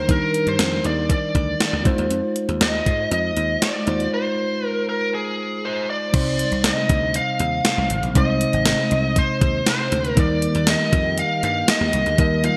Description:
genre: 1980s-style pop.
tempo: 119 BPM.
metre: 4/4.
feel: straight.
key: F dorian.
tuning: A4 = 445 Hz.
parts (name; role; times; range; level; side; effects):
bluesy overdriven lead guitar; melody; 0.0-12.6 s; Ab4 to F5; -25 LUFS; equal; distortion, delay.
tine electric piano; accompaniment; 0.0-12.6 s; C3 to C5; -27 LUFS; equal; none.
dry thumbed slap bass; bass; 0.0-12.5 s; Ab1 to Ab2; -27 LUFS; equal; none.
gated 80s digital drum machine; drums; 0.1-12.6 s; crash cymbal, hi-hat, kick drum, snare drum, tambourine; -23 LUFS; equal; gated reverb, gated reverb snare.
glassy FM pad; sustained chords; 10.2-12.6 s; Eb3 to G4; -34 LUFS; equal; none.
room: moderate plate reverb, RT60 2.4 s.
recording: bright 1980s-style digital production.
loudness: -20 LUFS.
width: mono.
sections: 0.0-6.1 A section; 6.1-12.6 B section.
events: break 4.1-6.1.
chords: 0.0 Ebmaj7; 1.9 Fm7; 6.1 Cmadd9; 8.2 Ab; 10.2 Eb.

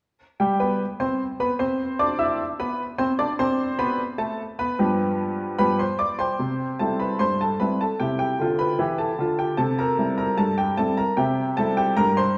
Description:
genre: ragtime piano.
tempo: 75 BPM.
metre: 2/4.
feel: straight.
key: C major.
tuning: A4 = 441 Hz.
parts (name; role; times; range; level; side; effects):
clear upright piano; solo; 0.4-12.4 s; G2 to E6; -24 LUFS; equal; none.
room: wet concert hall reverb, RT60 2.0 s.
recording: recorded in a church or concert hall.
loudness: -24 LUFS.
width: mono.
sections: 0.0-6.4 A section; 6.4-12.4 B section.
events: none.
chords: 0.0 C/G; 3.2 G7; 6.4 C; 9.6 C7.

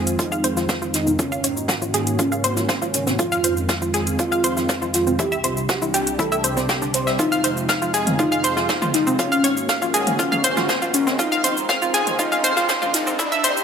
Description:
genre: melodic techno.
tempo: 120 BPM.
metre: 4/4.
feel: straight.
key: unclear.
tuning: A4 = 440 Hz.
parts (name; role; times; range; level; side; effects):
sweeping resonant pad; sustained chords; 0.0-13.6 s; C2 to G4; -26 LUFS; right 1 dB; chorus, sidechain pumping.
house drum kit; drums; 0.1-13.6 s; hi-hat, shaker, toms; -25 LUFS; left 1 dB; overdrive, sidechain pumping on toms, sidechain pumping on perc, sidechain pumping on hats.
fat analog lead; melody; 0.2-13.5 s; Db4 to C5; -25 LUFS; equal; ensemble chorus, cassette tape, sidechain pumping, tape echo.
analog pluck; arpeggios; 0.2-13.5 s; C4 to F5; -22 LUFS; equal; chorus, sidechain pumping, analog delay.
electronic kick drum; drums; 0.2-13.3 s; none; -27 LUFS; equal; overdrive, high-pass filter on kick, high-pass filter on room.
jazz brush drum kit; drums; 0.2-13.6 s; hi-hat, snare drum; -29 LUFS; right 2 dB; sidechain pumping on hats, high-pass filter on hats, high-pass filter on snare, high-pass filter on room, dub echo.
riser; sound effects; 9.3-13.6 s; none; -34 LUFS; right 1 dB; none.
room: wet echo chamber reverb, RT60 1.4 s.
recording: echo-heavy mix, high-pass filter.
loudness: -18 LUFS.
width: side -7 dB against mid.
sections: 0.0-13.6 A section.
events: build-up 0.0-13.6; filter sweep on synth arpeggio sound 0.0-13.6; filter sweep on analog synth lead 0.0-13.6.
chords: 0.0 Fm7; 1.2 Ab7sus4; 3.2 Fm7; 5.2 Csus2; 7.2 Fm7; 9.2 Ab7sus4; 11.2 Fm7.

